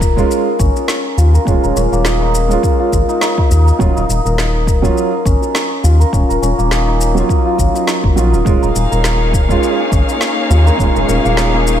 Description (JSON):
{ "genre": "organic downtempo", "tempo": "103 BPM", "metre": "4/4", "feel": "swing 56% on 16ths", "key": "unclear", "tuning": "A4 = 440 Hz", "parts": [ { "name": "santur", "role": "arpeggios", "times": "0.0-11.8 s", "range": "Bb3 to Bb4", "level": "-17 LUFS", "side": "left 2 dB", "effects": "vintage 12-bit sampler grit, tape echo" }, { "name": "round analog bass", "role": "bass", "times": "0.0-11.8 s", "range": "Eb1 to Eb2", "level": "-14 LUFS", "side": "equal", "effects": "sidechain pumping" }, { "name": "electronic kick drum", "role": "drums", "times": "0.0-10.9 s", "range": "none", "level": "-15 LUFS", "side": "equal", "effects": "none" }, { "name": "electronic shaker and snare drum", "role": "drums", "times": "0.0-11.8 s", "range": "none", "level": "-22 LUFS", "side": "left 1 dB", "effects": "none" }, { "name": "felt-muted upright piano", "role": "accompaniment", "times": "0.2-11.8 s", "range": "Gb3 to F4", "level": "-19 LUFS", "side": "right 7 dB", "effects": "sidechain pumping, analog delay" }, { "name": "dark chamber string section", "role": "sustained chords", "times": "8.5-11.8 s", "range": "Bb3 to F5", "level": "-18 LUFS", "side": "left 2 dB", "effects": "sidechain pumping" } ], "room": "light reverb, small room reverb", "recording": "echo-heavy mix", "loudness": "-11 LUFS", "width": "side -10 dB against mid", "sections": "0.0-11.8 A section", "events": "none", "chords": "0.0 Db/Eb; 3.8 Ebm7; 8.5 Db/Eb", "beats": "0.30 0.89 | 1.47 2.05 2.63 3.22 | 3.80 4.38 4.96 5.55 | 6.13 6.71 7.29 7.88 | 8.46 9.04 9.62 10.21 | 10.79 11.37" }